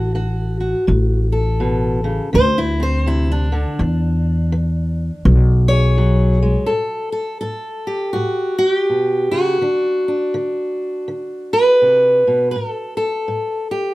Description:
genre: acoustic country blues, solo or duo.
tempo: 82 BPM.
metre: 4/4.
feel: swing 62% on 8ths.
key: unclear.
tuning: A4 = 440 Hz.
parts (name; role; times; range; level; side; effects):
fingerpicked steel-string acoustic guitar; melody; 0.0-13.9 s; A2 to C#5; -17 LUFS; equal; plate reverb.
upright bass; bass; 0.0-6.5 s; A1 to E2; -16 LUFS; equal; none.
room: moderate small room reverb, RT60 0.6 s.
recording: rough home demo mix.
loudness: -15 LUFS.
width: side -18 dB against mid.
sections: 0.0-6.7 A section; 6.7-13.9 B section.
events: steel-string acoustic guitar solo 0.0-6.7.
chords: 0.0 D; 2.3 Cadd9/D; 3.8 E7; 6.7 A7(no3); 9.6 D; 12.5 N.C..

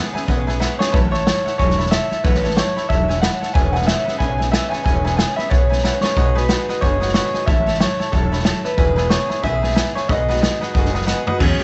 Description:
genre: rockabilly.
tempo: 184 BPM.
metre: 4/4.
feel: swing 59% on 8ths.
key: E major.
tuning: A4 = 438 Hz.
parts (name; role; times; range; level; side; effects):
picked steel-string acoustic guitar; accompaniment; 0.0-11.6 s; C#3 to C#5; -30 LUFS; equal; none.
tack piano; accompaniment; 0.0-11.6 s; F#3 to B5; -29 LUFS; equal; none.
upright bass; bass; 0.1-11.6 s; E1 to E2; -24 LUFS; equal; none.
vintage drum kit; drums; 0.2-11.6 s; crash cymbal, hi-hat, kick drum, snare drum, toms; -22 LUFS; equal; none.
electric guitar through a small old amp; melody; 0.8-11.1 s; A4 to G#5; -24 LUFS; equal; tape echo.
room: light reverb, small room reverb.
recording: nothing above 8.0 kHz.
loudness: -18 LUFS.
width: mono.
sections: 0.0-11.4 A section.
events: drum fill 0.6-0.9, 5.8-6.2, 11.1-11.4.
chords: 0.0 E6; 0.9 A6; 3.6 E6; 6.2 B6; 7.5 A6; 8.8 E6; 10.1 B6.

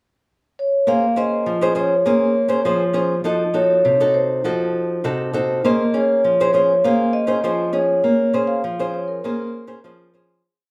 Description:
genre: samba.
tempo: 100 BPM.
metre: 4/4.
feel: straight.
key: Bb minor.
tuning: A4 = 440 Hz.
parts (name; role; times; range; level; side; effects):
vibraphone with soft mallets; melody; 0.6-10.1 s; Bb4 to F5; -21 LUFS; equal; plate reverb.
nylon-string guitar; accompaniment; 0.9-10.4 s; C3 to C5; -22 LUFS; equal; none.
room: wet large studio reverb, RT60 0.8 s.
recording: heard from further back in the room.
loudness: -19 LUFS.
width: mono.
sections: 0.0-0.9 pickup bar; 0.9-10.4 A section.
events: fade-out 8.0-10.4.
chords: 0.0 N.C.; 0.9 Bbm9; 3.3 F7b9; 5.6 Bbm9.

